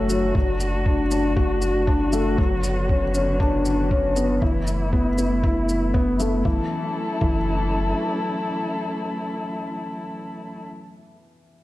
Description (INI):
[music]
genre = piano and strings electronica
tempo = 118 BPM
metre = 4/4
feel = straight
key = F# minor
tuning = A4 = 440 Hz
[part]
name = dark string quartet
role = sustained chords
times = 0.0-10.6 s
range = D3 to C#5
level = -27 LUFS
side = equal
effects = sidechain pumping, low-pass filter
[part]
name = felt-muted upright piano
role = riff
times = 0.0-11.6 s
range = E3 to F#4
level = -24 LUFS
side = left 1 dB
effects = tape echo
[part]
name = warm sub bass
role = bass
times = 0.0-7.9 s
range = F#1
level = -26 LUFS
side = equal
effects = sidechain pumping
[part]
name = shaker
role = drums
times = 0.1-6.3 s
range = none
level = -36 LUFS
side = equal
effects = studio reverb
[part]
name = electronic kick drum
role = drums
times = 0.3-7.4 s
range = none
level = -22 LUFS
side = equal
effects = studio reverb
[sound]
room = moderate recital hall reverb, RT60 1.5 s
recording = lossy compression artefacts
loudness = -20 LUFS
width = side -16 dB against mid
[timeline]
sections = 0.0-6.5 A section; 6.5-10.5 B section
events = filter sweep on string quartet 0.0-6.5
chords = 0.3 D/F#; 2.4 Bmadd9/F#; 4.4 Esus4/F#; 6.5 F#m7